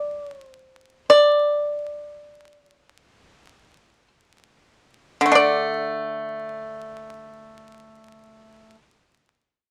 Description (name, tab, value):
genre	chinese traditional, Chinese solo plucked strings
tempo	free time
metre	none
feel	none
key	unclear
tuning	A4 = 442 Hz
part	pipa	solo	0.0-8.8 s	D3 to D5	-20 LUFS	equal	none
room	light reverb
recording	close, detailed microphones, vinyl crackle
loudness	-20 LUFS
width	mono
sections	0.0-5.3 A section; 5.3-9.7 B section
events	slowing down 0.0-5.3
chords	none